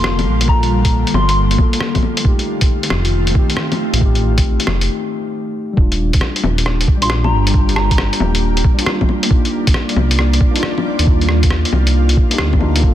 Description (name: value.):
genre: future garage.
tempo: 136 BPM.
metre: 4/4.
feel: swing 66% on 16ths.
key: unclear.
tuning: A4 = 442 Hz.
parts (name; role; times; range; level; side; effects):
soft synth bell; melody; 0.0-1.3, 7.0-8.2 s; Bb5 to C6; -22 LUFS; equal; chorus, tape echo.
mellow tine electric piano; accompaniment; 0.0-12.9 s; G3 to A4; -22 LUFS; left 3 dB; sidechain pumping, tape echo.
ethereal airy pad; sustained chords; 0.0-12.9 s; D3 to D5; -23 LUFS; equal; ensemble chorus, built-in reverb, sidechain pumping.
dark detuned saw bass; bass; 0.0-12.9 s; Eb1 to Eb2; -16 LUFS; equal; sidechain pumping.
lo-fi sampler-style drum kit; drums; 0.0-12.8 s; bongos, hi-hat, rim click; -20 LUFS; left 2 dB; small room ambience, soft clipping on snare.
electronic kick drum; drums; 0.5-12.9 s; none; -14 LUFS; equal; small room ambience.
room: light reverb.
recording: dense, heavily limited modern master.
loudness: -13 LUFS.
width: side -12 dB against mid.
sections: 0.0-5.8 A section; 5.8-12.9 B section.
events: break 4.9-5.8.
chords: 0.0 Gm7; 2.2 F7; 5.8 Ebmaj7; 9.3 Cm11.